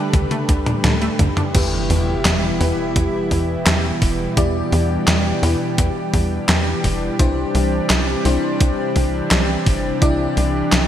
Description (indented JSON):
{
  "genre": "synthwave",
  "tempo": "85 BPM",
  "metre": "4/4",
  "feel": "straight",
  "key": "E minor",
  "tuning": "A4 = 444 Hz",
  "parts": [
    { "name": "lush unison pad", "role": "sustained chords", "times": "0.0-10.9 s", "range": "B2 to B4", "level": "-22 LUFS", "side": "equal", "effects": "chorus" },
    { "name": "analog pluck", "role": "arpeggios", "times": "0.0-1.5 s", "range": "D3 to D4", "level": "-27 LUFS", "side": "right 1 dB", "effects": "chorus, digital delay" },
    { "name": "FM electric piano with soft pad layer", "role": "stabs", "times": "0.0-10.9 s", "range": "D4 to D5", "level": "-24 LUFS", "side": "left 2 dB", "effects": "chorus, digital delay" },
    { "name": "tight sequencer bass", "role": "bass", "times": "0.1-10.9 s", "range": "E1 to E2", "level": "-20 LUFS", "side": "equal", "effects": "sidechain pumping" },
    { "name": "clean 12-bit digital drum machine", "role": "drums", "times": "0.1-10.9 s", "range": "crash cymbal, handclaps, hi-hat, snare drum, toms", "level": "-21 LUFS", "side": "equal", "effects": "gated reverb" },
    { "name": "electronic kick drum", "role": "drums", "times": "0.1-10.2 s", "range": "none", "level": "-19 LUFS", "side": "equal", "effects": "none" },
    { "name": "impact", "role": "sound effects", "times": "1.5-4.4 s", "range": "none", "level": "-28 LUFS", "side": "equal", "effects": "none" }
  ],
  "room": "moderate lush hall reverb, RT60 2.7 s",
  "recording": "bright 1980s-style digital production",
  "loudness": "-16 LUFS",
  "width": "side -10 dB against mid",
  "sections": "0.0-1.5 A section; 1.5-10.9 B section",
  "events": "drum fill 0.1-1.5; impact 1.5-4.4",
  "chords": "0.0 Dsus4; 1.5 Em; 7.2 Cadd9"
}